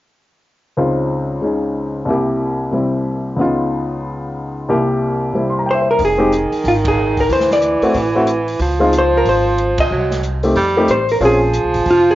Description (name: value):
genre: jazz, small-group swing and bop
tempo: 184 BPM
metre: 4/4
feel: swing 62% on 8ths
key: F minor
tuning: A4 = 442 Hz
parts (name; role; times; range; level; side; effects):
- warm baby grand piano; accompaniment; 0.8-11.4 s; C2 to C6; -16 LUFS; left 1 dB; cassette tape
- hollow-body jazz guitar; melody; 5.7-12.2 s; F4 to Eb5; -16 LUFS; equal; cassette tape
- mellow baritone saxophone; second line; 6.0-12.2 s; Eb3 to G3; -18 LUFS; right 2 dB; cassette tape
- upright bass; bass; 6.0-12.2 s; F1 to F2; -21 LUFS; equal; none
- open jazz drum kit; drums; 6.0-12.0 s; hi-hat, kick drum, ride cymbal, snare drum; -26 LUFS; equal; cassette tape
room: moderate digital room reverb, RT60 1.2 s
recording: home recording on cassette, nothing above 7.5 kHz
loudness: -14 LUFS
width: side -15 dB against mid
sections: 0.8-6.0 A section; 6.0-12.2 B section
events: band accent 6.8, 9.7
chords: 0.8 Dbmaj7; 2.1 C7; 3.4 Db9; 4.7 C7; 6.0 Fm7; 7.3 D9; 8.6 Dbmaj7; 9.9 Cm; 10.6 F7; 11.2 Bbm9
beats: | 0.77 1.09 1.42 1.75 | 2.08 2.40 2.73 3.06 | 3.38 3.71 4.04 4.36 | 4.69 5.01 5.34 5.67 | 5.99 6.32 6.64 6.97 | 7.30 7.62 7.95 8.28 | 8.60 8.93 9.25 9.58 | 9.90 10.23 10.56 10.88 | 11.21 11.53 11.86